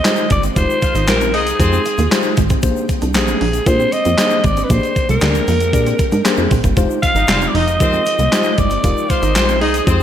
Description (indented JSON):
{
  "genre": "early-eighties boogie funk",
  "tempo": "116 BPM",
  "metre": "4/4",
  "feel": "straight",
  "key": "F dorian",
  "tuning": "A4 = 440 Hz",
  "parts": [
    { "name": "growling alto saxophone", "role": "melody", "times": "0.0-10.0 s", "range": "Ab4 to F5", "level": "-18 LUFS", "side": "equal", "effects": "slapback echo" },
    { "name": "mellow tine electric piano", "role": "accompaniment", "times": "0.0-10.0 s", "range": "Ab3 to D5", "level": "-22 LUFS", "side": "left 2 dB", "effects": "slow stereo tremolo, slapback echo" },
    { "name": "soft string machine", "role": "sustained chords", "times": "0.0-10.0 s", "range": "D3 to G5", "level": "-30 LUFS", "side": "equal", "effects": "none" },
    { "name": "clean electric guitar", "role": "riff", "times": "0.0-10.0 s", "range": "Ab3 to F4", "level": "-26 LUFS", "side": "right 6 dB", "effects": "tube saturation, ensemble chorus" },
    { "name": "clean 12-bit digital drum machine", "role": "drums", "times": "0.0-10.0 s", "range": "handclaps, hi-hat, kick drum, snare drum", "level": "-18 LUFS", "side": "equal", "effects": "overdrive" },
    { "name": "tube shaker", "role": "percussion", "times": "0.1-10.0 s", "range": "none", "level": "-34 LUFS", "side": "left 19 dB", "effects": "none" },
    { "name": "plucky analog bass", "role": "bass", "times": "0.3-10.0 s", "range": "F1 to Bb2", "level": "-18 LUFS", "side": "equal", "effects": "none" },
    { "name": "clear horn section", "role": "second line", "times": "0.8-1.8, 7.0-10.0 s", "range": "C4 to F5", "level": "-24 LUFS", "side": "left 2 dB", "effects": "tape echo" }
  ],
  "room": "moderate lush hall reverb, RT60 1.9 s, digital ambience",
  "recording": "big arena sound",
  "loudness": "-13 LUFS",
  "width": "side -10 dB against mid",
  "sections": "0.0-10.0 A section",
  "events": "none",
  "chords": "0.0 Fm9; 2.6 Bb13; 6.8 Fm9"
}